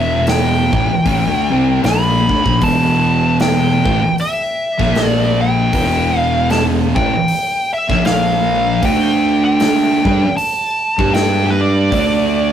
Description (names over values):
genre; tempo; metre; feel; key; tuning
stoner and doom metal; 77 BPM; 4/4; swing 58% on 8ths; E minor; A4 = 440 Hz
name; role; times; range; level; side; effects
fuzz lead guitar; melody; 0.0-12.5 s; B4 to B5; -17 LUFS; equal; wah, distortion, analog delay
thick fuzz guitar; riff; 0.0-12.5 s; E2 to G4; -18 LUFS; left 5 dB; distortion
thick fuzz guitar; riff; 0.0-12.5 s; E2 to G4; -20 LUFS; right 7 dB; distortion
fuzz fingered electric bass; bass; 0.0-12.5 s; E1 to G2; -20 LUFS; equal; overdrive, tube saturation
big rock drum kit; drums; 0.3-12.1 s; hi-hat, kick drum, snare drum; -21 LUFS; equal; none
room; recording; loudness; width
moderate studio reverb, RT60 0.5 s; rough rehearsal-room recording, tube saturation; -12 LUFS; side -9 dB against mid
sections
0.0-12.5 A section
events
none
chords
0.0 Em; 4.8 A#5; 5.7 Em; 7.9 A#5; 8.8 D5; 11.0 G5; 11.9 D5